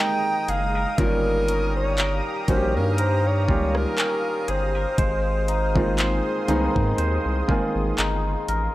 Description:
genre	contemporary R&B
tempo	60 BPM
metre	4/4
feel	swing 54% on 16ths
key	unclear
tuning	A4 = 442 Hz
part	warm alto saxophone	melody	0.0-8.0 s	Bb4 to G5	-26 LUFS	equal	none
part	felt-muted upright piano	accompaniment	0.0-8.7 s	Eb3 to Bb4	-27 LUFS	right 1 dB	none
part	lush unison pad	sustained chords	0.0-8.7 s	Ab3 to Eb6	-32 LUFS	right 1 dB	chorus
part	twangy electric guitar	arpeggios	0.0-8.7 s	F3 to C5	-30 LUFS	left 1 dB	none
part	saturated sub bass	bass	0.5-8.7 s	Gb1 to Ab2	-25 LUFS	equal	none
part	smooth R&B drum kit	drums	0.5-8.7 s	handclaps, hi-hat, kick drum, rim click	-24 LUFS	equal	none
room	little or no reverb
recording	dry, gritty hardware recording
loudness	-20 LUFS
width	side -16 dB against mid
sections	0.0-8.7 A section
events	none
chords	0.0 Fm11; 1.0 Eb9/G; 5.0 Ab6

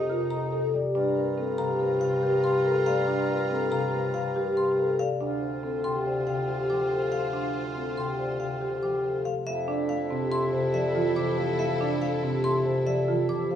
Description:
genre	classical, minimalist pattern music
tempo	141 BPM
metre	5/4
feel	straight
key	F major from 9.5 s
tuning	A4 = 441 Hz
part	vibraphone with soft mallets	melody	0.0-13.6 s	A4 to A5	-32 LUFS	left 7 dB	none
part	warm oboe	second line	0.0-13.5 s	Eb4 to F4	-38 LUFS	right 2 dB	none
part	concert harp	accompaniment	0.0-13.6 s	C3 to C4	-28 LUFS	left 1 dB	none
part	clear symphonic violin section	sustained chords	0.0-13.5 s	Eb4 to Bb5	-39 LUFS	left 4 dB	none
part	xylophone with wooden mallets	arpeggios	0.0-13.6 s	Eb5 to D6	-36 LUFS	left 2 dB	none
part	warm bassoon	bass	0.0-13.6 s	D2 to G2	-32 LUFS	right 1 dB	none
part	marimba with medium mallets	arpeggios	0.1-13.6 s	C4 to C5	-33 LUFS	right 6 dB	none
room	wet large studio reverb, RT60 0.8 s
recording	heard from further back in the room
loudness	-24 LUFS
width	side -9 dB against mid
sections	0.0-9.5 A section; 9.5-13.6 B section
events	none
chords	0.0 F13sus4; 1.0 Gm9; 5.2 Dm7; 9.5 Fmaj7

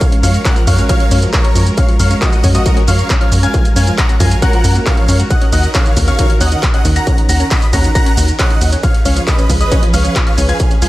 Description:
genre	uplifting trance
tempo	136 BPM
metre	4/4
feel	straight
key	F# major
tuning	A4 = 440 Hz
part	big supersaw lead	melody	0.0-10.9 s	F#4 to B5	-20 LUFS	right 1 dB	phaser, cassette tape, sidechain pumping, tape echo
part	warm baby grand piano	second line	0.0-10.9 s	C#6 to B6	-25 LUFS	left 3 dB	sidechain pumping, dub echo
part	rich symphonic string section	sustained chords	0.0-10.9 s	D#3 to B4	-22 LUFS	right 1 dB	vintage 12-bit sampler grit, sidechain pumping
part	electronic kick drum	drums	0.0-10.7 s	none	-13 LUFS	equal	distortion
part	punchy analog drum machine	drums	0.0-10.9 s	handclaps, hi-hat, ride cymbal, shaker	-20 LUFS	right 1 dB	sidechain pumping on hats, sidechain pumping on cymbals, sidechain pumping on perc
part	analog pluck	arpeggios	0.1-10.9 s	D#3 to F#4	-22 LUFS	left 1 dB	chorus, cassette tape, sidechain pumping, dub echo
part	tight sequencer bass	bass	0.2-10.9 s	C#2 to F#2	-13 LUFS	equal	sidechain pumping
room	digital ambience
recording	none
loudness	-10 LUFS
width	side -17 dB against mid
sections	0.0-10.9 A section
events	none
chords	0.0 F#maj7; 5.3 D#m7; 8.8 C#7

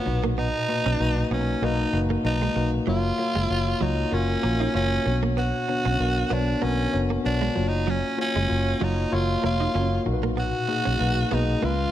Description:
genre	pop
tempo	96 BPM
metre	4/4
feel	swing 55% on 16ths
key	unclear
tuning	A4 = 436 Hz
part	raspy tenor saxophone	melody	0.0-11.9 s	B3 to F#4	-27 LUFS	right 2 dB	ping-pong delay
part	tine electric piano	accompaniment	0.0-11.9 s	A#2 to D#5	-26 LUFS	left 4 dB	none
part	direct-recorded clean electric guitar	riff	0.1-11.7 s	F#3 to D#4	-33 LUFS	right 7 dB	ensemble chorus, ping-pong delay
part	vintage muted fingered electric bass	bass	0.1-11.9 s	E#1 to C#2	-26 LUFS	equal	none
room	light reverb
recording	none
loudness	-22 LUFS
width	side -12 dB against mid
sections	0.0-11.9 A section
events	none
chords	0.1 Bmaj7; 2.9 F#maj7; 5.1 Bmadd9; 7.6 F#maj7; 10.1 Bmaj7

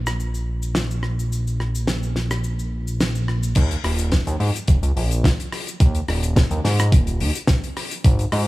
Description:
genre	nu-disco, nu disco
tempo	107 BPM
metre	4/4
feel	straight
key	unclear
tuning	A4 = 440 Hz
part	fat analog bass	bass	0.0-8.5 s	Eb1 to Ab2	-21 LUFS	equal	none
part	damped 70s drum kit	drums	0.1-8.4 s	cabasa, crash cymbal, hi-hat, rim click, snare drum	-25 LUFS	left 1 dB	none
part	electronic kick drum	drums	3.6-8.2 s	none	-16 LUFS	equal	none
room	little or no reverb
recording	small room ambience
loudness	-18 LUFS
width	side -18 dB against mid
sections	0.0-3.6 A section; 3.6-8.5 B section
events	drop 3.6-8.5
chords	none

